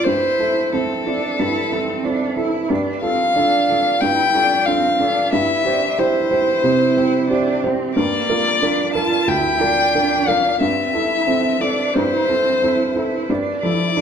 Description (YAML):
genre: neoclassical piano and strings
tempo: 91 BPM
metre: 4/4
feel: rubato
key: unclear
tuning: A4 = 439 Hz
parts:
  - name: rich violin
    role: melody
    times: 0.0-14.0 s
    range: A4 to A5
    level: -18 LUFS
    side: left 2 dB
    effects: none
  - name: warm cello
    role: second line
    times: 0.0-14.0 s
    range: Bb3 to F4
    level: -24 LUFS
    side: right 4 dB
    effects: none
  - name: warm upright piano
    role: accompaniment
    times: 0.0-14.0 s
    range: D2 to C5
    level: -20 LUFS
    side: right 2 dB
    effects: none
room: wet large studio reverb, RT60 1.4 s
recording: band playing live in one room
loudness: -16 LUFS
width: side -7 dB against mid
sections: 0.0-14.0 A section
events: none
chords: 0.1 Am7/G; 2.7 Dm/G; 5.3 C/G; 8.0 Gm7; 10.6 Am7/G; 13.3 Dm/G